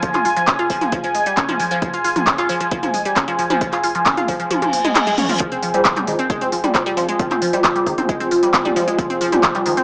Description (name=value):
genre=driving peak-time techno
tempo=134 BPM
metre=4/4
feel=straight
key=F minor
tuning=A4 = 440 Hz
part: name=resonant blip pluck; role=riff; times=0.0-9.8 s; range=Eb3 to F4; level=-24 LUFS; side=equal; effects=phaser, tube saturation, sidechain pumping, cassette tape, analog delay
part: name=electronic kick drum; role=drums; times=0.0-9.5 s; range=none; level=-27 LUFS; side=equal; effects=cassette tape
part: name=techno drum kit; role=drums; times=0.0-9.8 s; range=handclaps, hi-hat, toms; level=-22 LUFS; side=equal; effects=cassette tape, sidechain pumping on hats, sidechain pumping on toms
part: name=deep dark ambient pad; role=texture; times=0.0-9.8 s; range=F4 to Ab5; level=-23 LUFS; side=equal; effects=chorus, built-in reverb, sidechain pumping, cassette tape
part: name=warm sub bass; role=bass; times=0.1-9.8 s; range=F1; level=-46 LUFS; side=equal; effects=none
part: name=reverse cymbal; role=sound effects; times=4.7-5.4 s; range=none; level=-28 LUFS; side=equal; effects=none
part: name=filtered dub chord stab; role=stabs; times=5.4-9.8 s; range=F3 to C4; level=-28 LUFS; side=equal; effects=phaser, ensemble chorus, sidechain pumping, cassette tape, tape echo
room=moderate spring reverb, RT60 1.5 s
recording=home recording on cassette, small speaker sound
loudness=-18 LUFS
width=mono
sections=0.0-5.4 A section; 5.4-9.8 B section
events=kick drops out 4.5-5.4; drum fill 4.5-5.4; reverse cymbal 4.7-5.4; drop 5.4-9.8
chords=0.0 Fm